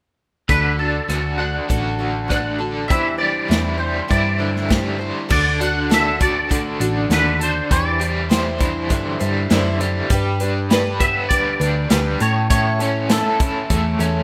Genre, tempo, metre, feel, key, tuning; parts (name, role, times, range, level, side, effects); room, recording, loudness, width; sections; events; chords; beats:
folk rock and heartland rock; 100 BPM; 4/4; straight; D mixolydian; A4 = 440 Hz
twangy electric guitar; melody; 0.5-14.2 s; A4 to F#5; -24 LUFS; equal; ensemble chorus
picked twelve-string acoustic guitar; accompaniment; 0.5-14.2 s; A2 to C5; -28 LUFS; equal
overdriven electric guitar; riff; 0.5-14.2 s; A2 to C5; -25 LUFS; equal; tremolo
hollow-body short-scale picked electric bass; bass; 0.5-14.2 s; A1 to A2; -25 LUFS; equal
natural country drum kit; drums; 0.5-14.1 s; crash cymbal, hi-hat, kick drum, rim click, snare drum; -22 LUFS; equal
small room ambience; rough home demo mix; -19 LUFS; mono
0.5-5.3 A section; 5.3-14.2 B section
0.5 D; 2.9 Cadd9/E; 5.3 D; 7.7 Cadd9/E; 10.1 G; 12.2 A
| 0.49 1.09 1.69 2.30 | 2.90 3.50 4.10 4.70 | 5.30 5.90 6.50 7.10 | 7.71 8.30 8.90 9.50 | 10.10 10.70 11.30 11.90 | 12.50 13.10 13.70